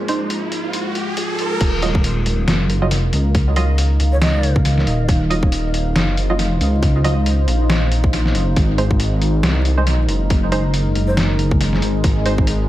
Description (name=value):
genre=deep dubstep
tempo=138 BPM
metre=4/4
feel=swing 57% on 16ths, half-time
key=Eb dorian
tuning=A4 = 440 Hz
part: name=deep dark ambient pad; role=sustained chords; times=0.0-12.7 s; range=Ab3 to F5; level=-24 LUFS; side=left 1 dB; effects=chorus, built-in reverb
part: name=riser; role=sound effects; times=0.0-1.6 s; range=none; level=-24 LUFS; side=right 2 dB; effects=none
part: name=filtered dub chord stab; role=stabs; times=0.1-12.3 s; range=Gb3 to Eb5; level=-26 LUFS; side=right 3 dB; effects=wide subtle chorus, dub echo
part: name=trip hop sampler-style drum kit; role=drums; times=0.1-12.6 s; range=crash cymbal, hi-hat, snare drum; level=-23 LUFS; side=equal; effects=small room ambience, tape echo
part: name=dark detuned saw bass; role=bass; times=1.6-12.7 s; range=Eb1 to Db2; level=-17 LUFS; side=equal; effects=none
part: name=electronic kick drum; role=drums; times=1.6-12.5 s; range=none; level=-17 LUFS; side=equal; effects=small room ambience
part: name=breathy bright long shakuhachi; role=melody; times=4.1-4.6, 11.1-11.2 s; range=C5 to Eb5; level=-28 LUFS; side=right 1 dB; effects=dub echo
room=light reverb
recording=echo-heavy mix, vinyl crackle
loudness=-15 LUFS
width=side -14 dB against mid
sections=0.0-1.6 A section; 1.6-12.7 B section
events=riser 0.0-1.6; drop 1.6-12.7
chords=0.0 N.C.; 1.6 Ebmadd9; 8.6 Ab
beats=0.30 0.74 1.17 | 1.61 2.04 2.48 2.91 | 3.35 3.78 4.22 4.65 | 5.09 5.52 5.96 6.39 | 6.83 7.26 7.70 8.13 | 8.56 9.00 9.43 9.87 | 10.30 10.74 11.17 11.61 | 12.04 12.48